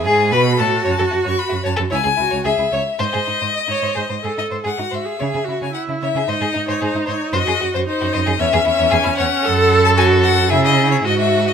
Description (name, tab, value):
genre	quick classical-period movement for string quartet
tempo	112 BPM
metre	4/4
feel	rubato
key	C# minor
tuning	A4 = 442 Hz
part	clear violin	melody	0.0-11.5 s	B#4 to C#6	-20 LUFS	left 8 dB	none
part	rich viola	accompaniment	0.0-11.5 s	C#4 to D#5	-20 LUFS	right 2 dB	none
part	rich cello	bass	0.0-11.5 s	C#2 to C#3	-21 LUFS	right 5 dB	none
part	rich violin	second line	0.1-11.5 s	D#4 to C#5	-22 LUFS	left 3 dB	none
room	moderate stone room reverb, RT60 1.4 s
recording	minimal, uncompressed stereo recording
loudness	-15 LUFS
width	side -7 dB against mid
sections	0.0-11.5 A section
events	none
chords	0.0 Eadd11 (rootless); 0.9 F#m; 1.9 C#m; 3.0 G#; 5.2 C#m; 6.3 G#; 7.3 G#7/F# (rootless); 8.4 C#m/E; 9.5 F#m; 10.5 C#m